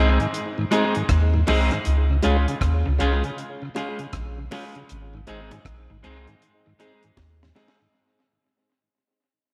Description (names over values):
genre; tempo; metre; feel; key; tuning
roots reggae; 79 BPM; 4/4; swing 65% on 16ths; unclear; A4 = 444 Hz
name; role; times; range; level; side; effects
clean electric guitar; accompaniment; 0.0-7.8 s; Ab3 to Ab4; -28 LUFS; equal; spring reverb, tape echo
mellow tonewheel organ; accompaniment; 0.0-7.9 s; Ab2 to F4; -31 LUFS; equal; slow rotary speaker, tape echo
soft dub sub bass; bass; 0.0-7.5 s; Ab1 to Eb2; -23 LUFS; equal; none
deep reggae drum kit; drums; 0.2-7.9 s; hi-hat, kick drum, rim click, snare drum; -34 LUFS; equal; tape echo
bongos; percussion; 0.7-7.8 s; none; -36 LUFS; equal; none
room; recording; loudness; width
moderate echo chamber reverb, RT60 2.5 s; none; -22 LUFS; mono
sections
0.0-7.9 A section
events
fade-out 0.0-7.9; drum fill 7.2-7.9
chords
0.0 Ab; 1.9 Db; 4.9 Ab